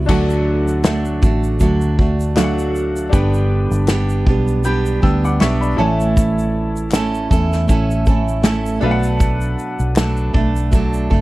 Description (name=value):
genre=acoustic pop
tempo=79 BPM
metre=4/4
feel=swing 55% on 16ths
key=unclear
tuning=A4 = 440 Hz
part: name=bright upright piano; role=accompaniment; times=0.0-11.2 s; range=D4 to G6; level=-26 LUFS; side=left 4 dB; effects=none
part: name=fingerpicked steel-string acoustic guitar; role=accompaniment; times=0.0-11.2 s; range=G2 to A4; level=-19 LUFS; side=right 3 dB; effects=none
part: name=vintage muted fingered electric bass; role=bass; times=0.0-11.2 s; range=F#1 to E2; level=-19 LUFS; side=equal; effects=none
part: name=unplugged drum kit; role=drums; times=0.1-11.2 s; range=crash cymbal, kick drum, shaker, snare drum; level=-17 LUFS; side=equal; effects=none
part: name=group handclap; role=percussion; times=0.8-10.2 s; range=none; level=-32 LUFS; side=left 3 dB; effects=none
room=little or no reverb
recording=dry, close 1970s-style studio recording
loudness=-14 LUFS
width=side -18 dB against mid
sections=0.1-11.2 A section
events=none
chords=0.1 D; 3.1 G; 5.8 A; 8.8 Bm7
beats=| 0.09 0.85 1.61 2.37 | 3.13 3.89 4.65 5.41 | 6.17 6.93 7.69 8.45 | 9.21 9.97 10.73